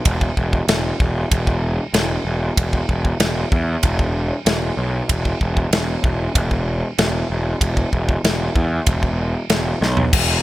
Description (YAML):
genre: heavy metal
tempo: 95 BPM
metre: 4/4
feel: straight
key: unclear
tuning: A4 = 440 Hz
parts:
  - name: fuzz picked electric bass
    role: bass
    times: 0.1-10.4 s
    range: E1 to E2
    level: -20 LUFS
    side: equal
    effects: overdrive
  - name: modern studio drum kit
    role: drums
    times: 0.1-10.3 s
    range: china cymbal, crash cymbal, kick drum, ride cymbal, snare drum, toms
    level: -20 LUFS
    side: equal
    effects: none
room: little or no reverb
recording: bright 1980s-style digital production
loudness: -17 LUFS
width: side -16 dB against mid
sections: 0.0-10.1 A section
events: drum fill 9.8-10.1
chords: none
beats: | 0.06 0.69 1.32 1.95 | 2.58 3.21 3.84 4.47 | 5.09 5.72 6.35 6.98 | 7.61 8.24 8.87 9.50 | 10.12